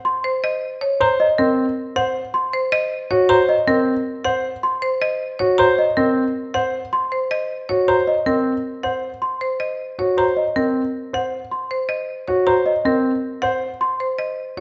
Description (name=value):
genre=classical, minimalist pattern music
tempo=157 BPM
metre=6/4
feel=straight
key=unclear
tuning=A4 = 438 Hz
part: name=worn celesta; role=arpeggios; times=0.1-14.1 s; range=Eb5 to C6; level=-24 LUFS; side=equal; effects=none
part: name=marimba with hard mallets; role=melody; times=0.2-14.6 s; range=Bb4 to Bb5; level=-25 LUFS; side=equal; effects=none
part: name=clear grand piano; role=arpeggios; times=1.0-14.6 s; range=C4 to C5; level=-21 LUFS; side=equal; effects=none
room=wet large studio reverb, RT60 1.4 s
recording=nothing above 7.8 kHz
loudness=-20 LUFS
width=mono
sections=0.0-14.6 A section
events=none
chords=none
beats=0.05 | 0.43 0.82 1.20 1.58 1.96 2.35 | 2.73 3.11 3.49 3.87 4.25 4.64 | 5.02 5.40 5.78 6.17 6.55 6.93 | 7.31 7.70 8.08 8.46 8.84 9.22 | 9.61 9.99 10.37 10.75 11.13 11.52 | 11.90 12.28 12.66 13.04 13.43 13.81 | 14.19 14.57